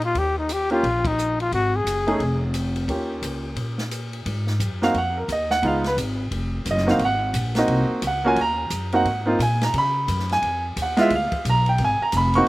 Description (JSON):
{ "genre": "jazz, small-group swing and bop", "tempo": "175 BPM", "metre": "4/4", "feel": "swing 62% on 8ths", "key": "unclear", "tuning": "A4 = 440 Hz", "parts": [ { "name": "breathy trumpet", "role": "melody", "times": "0.0-2.4 s", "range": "Eb4 to Ab4", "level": "-22 LUFS", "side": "left 2 dB", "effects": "none" }, { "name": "upright bass", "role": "bass", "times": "0.0-12.5 s", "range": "F1 to Db3", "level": "-25 LUFS", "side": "equal", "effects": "none" }, { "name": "open jazz drum kit", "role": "drums", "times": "0.0-12.4 s", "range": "hi-hat, kick drum, ride cymbal, snare drum", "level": "-32 LUFS", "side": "left 1 dB", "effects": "none" }, { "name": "warm baby grand piano", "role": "accompaniment", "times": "0.7-12.5 s", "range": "Ab3 to Db6", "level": "-21 LUFS", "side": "right 1 dB", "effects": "slapback echo" } ], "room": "little or no reverb", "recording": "recorded outdoors, with no room sound", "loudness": "-20 LUFS", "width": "side -18 dB against mid", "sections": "0.0-4.3 A section; 4.3-12.5 B section", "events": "band accent 1.0", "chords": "0.1 Ebadd9; 1.5 Ab5; 2.2 N.C.; 2.9 Eb9; 4.3 Ab7sus2; 5.6 Db9; 7.0 Ab9; 8.4 Ebm; 9.1 Abadd9; 9.7 Db9; 11.1 Ddim7", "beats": "| 0.15 0.49 0.83 1.17 | 1.51 1.86 2.20 2.54 | 2.88 3.23 3.57 3.91 | 4.25 4.60 4.94 5.28 | 5.62 5.97 6.31 6.65 | 7.00 7.34 7.68 8.02 | 8.37 8.71 9.05 9.39 | 9.74 10.08 10.42 10.76 | 11.11 11.45 11.79 12.13 | 12.47" }